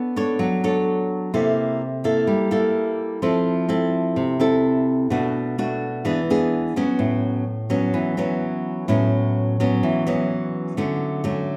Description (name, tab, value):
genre	bossa nova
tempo	127 BPM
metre	4/4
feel	straight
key	A major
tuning	A4 = 440 Hz
part	nylon-string guitar	solo	0.0-11.6 s	A2 to C#5	-22 LUFS	equal	none
room	wet large studio reverb, RT60 1.2 s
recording	band playing live in one room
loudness	-22 LUFS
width	mono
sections	0.0-10.8 A section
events	none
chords	0.0 Bm9; 1.3 C6; 3.2 Fmaj7; 5.1 Bm7; 6.1 E7; 7.0 A69; 10.8 Dmaj7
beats	0.40 0.87 | 1.34 1.81 2.28 2.75 | 3.23 3.70 4.17 4.64 | 5.11 5.58 6.05 6.53 | 7.00 7.47 7.94 8.41 | 8.88 9.36 9.83 10.30 | 10.77 11.24